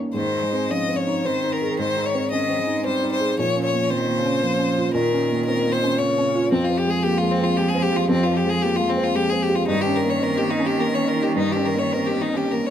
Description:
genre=neoclassical piano and strings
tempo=113 BPM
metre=3/4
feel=rubato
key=Ab major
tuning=A4 = 442 Hz
part: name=felt-muted upright piano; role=accompaniment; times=0.0-12.7 s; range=F2 to Ab4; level=-22 LUFS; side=right 1 dB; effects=none
part: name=clear violin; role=melody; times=0.2-12.7 s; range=C4 to Eb5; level=-23 LUFS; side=left 4 dB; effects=none
part: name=rich cello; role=second line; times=0.2-12.7 s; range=Db3 to Ab3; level=-28 LUFS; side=right 5 dB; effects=none
room=light reverb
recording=none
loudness=-19 LUFS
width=side -10 dB against mid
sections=0.2-12.7 A section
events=none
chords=0.2 Ab; 3.4 Bbm; 6.5 Fmadd9; 9.7 Eb7/G

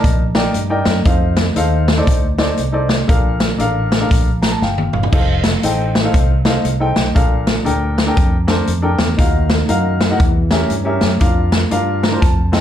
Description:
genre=uptempo gospel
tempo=118 BPM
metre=4/4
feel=swing 62% on 8ths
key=Bb major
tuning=A4 = 440 Hz
part: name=warm upright piano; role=accompaniment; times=0.0-12.6 s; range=Bb2 to Bb5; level=-19 LUFS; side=left 1 dB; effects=plate reverb, slapback echo
part: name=fingered electric bass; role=bass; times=0.0-12.6 s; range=F1 to G2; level=-18 LUFS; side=equal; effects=none
part: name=swinging big-band drum kit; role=drums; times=0.0-12.6 s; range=crash cymbal, hi-hat, kick drum, snare drum, toms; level=-16 LUFS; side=equal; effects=none
room=light reverb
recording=live gig heard through the venue's PA, club reverb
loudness=-13 LUFS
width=side -10 dB against mid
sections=0.0-12.6 A section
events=upright piano fill 4.1-5.1, 11.7-12.6; drum fill 4.6-5.1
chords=0.0 Ebmaj7; 1.1 F7; 3.1 Bbmaj7; 5.1 F7; 7.2 Bbmaj7; 9.2 Ebmadd9; 10.2 Edim7; 11.2 Bb/F

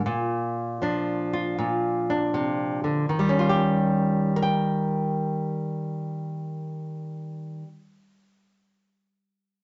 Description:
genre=solo jazz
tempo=79 BPM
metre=4/4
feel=swing 67% on 8ths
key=Eb major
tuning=A4 = 441 Hz
part: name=flamenco guitar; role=solo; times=0.0-7.8 s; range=Bb2 to G5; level=-26 LUFS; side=equal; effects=none
room=wet studio reverb, RT60 0.7 s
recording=nothing above 7.8 kHz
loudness=-26 LUFS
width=mono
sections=0.0-3.1 A section; 3.1-6.1 B section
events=none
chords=0.1 Bbadd9; 3.1 Eb9

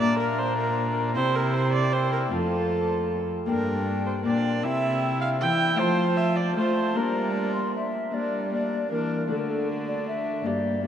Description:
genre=classical, renaissance-style consort dance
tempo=155 BPM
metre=3/4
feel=straight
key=G dorian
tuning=A4 = 440 Hz
part: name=mellow hollow tenor recorder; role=melody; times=0.0-10.8 s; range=A4 to C6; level=-31 LUFS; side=left 2 dB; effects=none
part: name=warm viola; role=second line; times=0.0-10.8 s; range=F#4 to G5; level=-28 LUFS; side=right 2 dB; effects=none
part: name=Celtic harp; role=accompaniment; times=0.0-10.9 s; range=F2 to F4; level=-30 LUFS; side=left 4 dB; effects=none
part: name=warm viola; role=accompaniment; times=0.0-10.9 s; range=Bb3 to F4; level=-33 LUFS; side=left 2 dB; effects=none
part: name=rich cello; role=bass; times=0.0-10.9 s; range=F2 to A3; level=-29 LUFS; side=right 2 dB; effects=none
room=wet cathedral reverb, RT60 5.8 s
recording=in a vast, echoing space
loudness=-23 LUFS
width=side -9 dB against mid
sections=0.0-8.1 A section; 8.1-10.9 B section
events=none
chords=0.0 Bb; 1.2 C; 2.3 F; 3.5 Gm; 4.6 C; 5.8 F; 7.0 Gm; 9.3 D

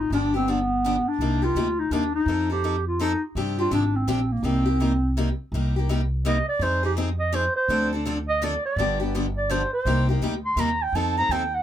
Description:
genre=acoustic string swing (jazz manouche)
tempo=166 BPM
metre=3/4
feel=swing 61% on 8ths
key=C minor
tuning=A4 = 439 Hz
part: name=breathy clarinet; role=melody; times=0.0-11.6 s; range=Bb3 to C6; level=-24 LUFS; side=equal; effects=plate reverb
part: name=upright bass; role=bass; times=0.0-11.6 s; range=G1 to G2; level=-26 LUFS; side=equal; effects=none
part: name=picked steel-string acoustic guitar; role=accompaniment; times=0.1-11.4 s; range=C3 to A4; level=-27 LUFS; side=left 2 dB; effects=none
room=light reverb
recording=none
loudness=-21 LUFS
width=side -10 dB against mid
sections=0.0-5.5 A section; 5.5-11.6 B section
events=clarinet solo 5.5-11.6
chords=0.1 G7; 1.2 Cm9; 2.3 F7; 3.4 G7sus4; 4.4 Cm7; 6.6 Fm7; 7.7 Dm7; 8.8 G7; 9.9 Cm9; 10.9 F7

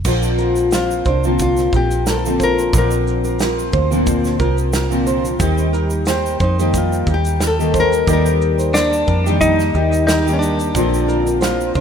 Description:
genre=acoustic pop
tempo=90 BPM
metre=4/4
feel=swing 55% on 16ths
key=Bb major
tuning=A4 = 445 Hz
part: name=fingerpicked steel-string acoustic guitar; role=accompaniment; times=0.0-11.8 s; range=Bb2 to G4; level=-19 LUFS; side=left 1 dB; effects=double-tracked left and right
part: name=vintage muted fingered electric bass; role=bass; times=0.0-11.8 s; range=Bb1 to F2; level=-19 LUFS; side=equal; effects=none
part: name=natural country drum kit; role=drums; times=0.0-11.8 s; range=crash cymbal, kick drum, shaker, snare drum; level=-23 LUFS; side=right 1 dB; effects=none
part: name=tube shaker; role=percussion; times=0.0-11.7 s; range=none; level=-32 LUFS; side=right 4 dB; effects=none
part: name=fingerpicked steel-string acoustic guitar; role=arpeggios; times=0.4-11.8 s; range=G4 to D5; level=-26 LUFS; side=right 6 dB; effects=digital delay
part: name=nylon-string guitar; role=melody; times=0.7-11.8 s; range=D4 to Bb4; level=-21 LUFS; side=left 5 dB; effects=digital delay
part: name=direct-recorded clean electric guitar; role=second line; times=8.7-11.2 s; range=Db4 to Eb4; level=-18 LUFS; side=left 1 dB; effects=phaser, digital delay
room=moderate lush hall reverb, RT60 2.3 s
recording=rough home demo mix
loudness=-14 LUFS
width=side -7 dB against mid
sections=0.1-11.8 A section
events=none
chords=0.1 Bbadd9; 5.4 Eb; 10.7 Bbadd9

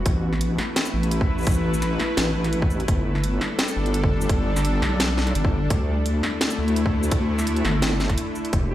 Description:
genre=half-time drum and bass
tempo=170 BPM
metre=4/4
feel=swing 53% on 16ths, half-time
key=unclear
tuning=A4 = 442 Hz
part: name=bowed-like drone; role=sustained chords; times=0.0-8.7 s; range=D3 to F#5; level=-26 LUFS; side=left 1 dB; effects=built-in reverb, sidechain pumping
part: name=deep soft wobble bass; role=bass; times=0.0-8.7 s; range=E1 to D2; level=-23 LUFS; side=equal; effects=chorus
part: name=drum and bass drum kit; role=drums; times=0.1-8.6 s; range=hi-hat, shaker, snare drum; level=-26 LUFS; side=equal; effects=overdrive, small room ambience
part: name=electronic kick drum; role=drums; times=0.1-8.6 s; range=none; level=-22 LUFS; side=equal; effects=overdrive, small room ambience
part: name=pulsing gated texture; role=texture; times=8.6-8.7 s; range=G4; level=-36 LUFS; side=right 2 dB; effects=chorus, built-in reverb
room=light reverb, digital ambience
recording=played on a big sound system in a bare room, large studio reverb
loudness=-20 LUFS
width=side -13 dB against mid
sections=0.0-8.7 A section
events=break 8.2-8.5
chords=0.1 A5; 2.9 G; 5.7 Dsus4

